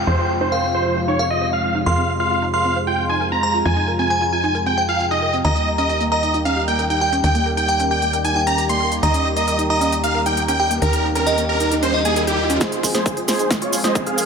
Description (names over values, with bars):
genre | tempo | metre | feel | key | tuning
uplifting trance | 134 BPM | 4/4 | straight | F minor | A4 = 440 Hz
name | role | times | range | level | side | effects
glassy synth bell | second line | 0.0-12.5 s | Eb5 to C6 | -23 LUFS | left 1 dB | chorus, tremolo, tape echo
filtered supersaw swell | sustained chords | 0.0-14.3 s | C3 to Ab4 | -25 LUFS | equal | sidechain pumping, low-pass filter
analog pluck | arpeggios | 0.0-14.2 s | Bb3 to C5 | -27 LUFS | right 3 dB | chorus, sidechain pumping, tape echo
tight sequencer bass | bass | 0.0-12.6 s | Eb2 to F2 | -24 LUFS | equal | sidechain pumping
downlifter and riser | sound effects | 0.0-1.9, 10.2-14.3 s | none | -30 LUFS | right 2 dB | none
big supersaw lead | melody | 0.1-14.3 s | F4 to C6 | -20 LUFS | right 1 dB | sidechain pumping, low-pass filter, dub echo
big-room dance drum kit | drums | 0.1-14.3 s | hi-hat, snare drum | -27 LUFS | equal | low-pass filter on snare, low-pass filter on hats, low-pass filter on toms, low-pass filter on room
electronic kick drum | drums | 12.6-14.0 s | none | -25 LUFS | equal | high-pass filter on kick, high-pass filter on room
cabasa | percussion | 12.6-14.3 s | none | -24 LUFS | right 4 dB | none
room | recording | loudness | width
light reverb | none | -16 LUFS | side -6 dB against mid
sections
0.0-12.6 A section; 12.6-14.3 B section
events
filter sweep on drum 0.0-12.6; filter sweep on synth pluck 0.0-12.6; filter sweep on supersaw synth 0.0-12.6; riser 10.2-12.6; build-up 12.6-14.3; drum fill 12.6-14.3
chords
0.0 Fm; 5.4 Eb; 12.6 Fm